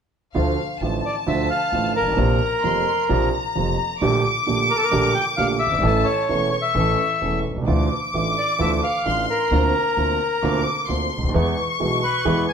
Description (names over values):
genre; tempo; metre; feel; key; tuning
tango; 131 BPM; 4/4; rubato; D minor; A4 = 439 Hz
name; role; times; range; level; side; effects
clear studio violin section; second line; 0.3-12.5 s; F5 to D6; -25 LUFS; left 2 dB; none
warm baby grand piano; accompaniment; 0.3-12.4 s; E1 to A4; -22 LUFS; right 3 dB; none
upright bass; bass; 0.4-12.4 s; E1 to E2; -26 LUFS; left 1 dB; none
bandoneon; melody; 1.1-12.5 s; A4 to G#5; -22 LUFS; left 1 dB; none
room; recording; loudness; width
wet stone room reverb, RT60 1.0 s; band playing live in one room; -18 LUFS; side -7 dB against mid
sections
0.3-12.5 A section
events
none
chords
0.3 Dm; 2.2 Bbsus2; 4.0 Gmadd9/Bb; 5.8 A; 7.7 Dmadd9; 9.5 Bbadd9/D; 11.3 E